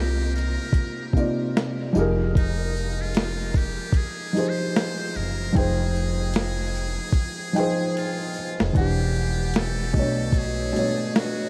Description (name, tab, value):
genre	lo-fi hip hop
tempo	75 BPM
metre	4/4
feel	swing 60% on 16ths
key	unclear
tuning	A4 = 440 Hz
part	trumpet with metal mute	melody	0.0-11.5 s	Eb4 to C5	-35 LUFS	equal	diffuse ambient delay
part	felt-muted upright piano	accompaniment	0.0-11.5 s	B2 to G5	-28 LUFS	equal	none
part	upright bass	bass	0.0-10.7 s	E1 to C2	-28 LUFS	equal	none
part	dusty soul sampler-style drum kit	drums	0.4-11.4 s	hi-hat, kick drum, shaker, snare drum	-27 LUFS	equal	none
part	tambourine	percussion	0.4-11.0 s	none	barely audible	none	none
room	moderate huge ambient reverb, RT60 8.0 s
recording	dreamy mix soaked in reverb, vinyl crackle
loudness	-24 LUFS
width	mono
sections	0.0-8.8 A section; 8.8-11.5 B section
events	drum fill 7.2-8.8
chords	0.0 Cm11; 2.0 Fm11; 8.8 Em9; 10.0 Bm9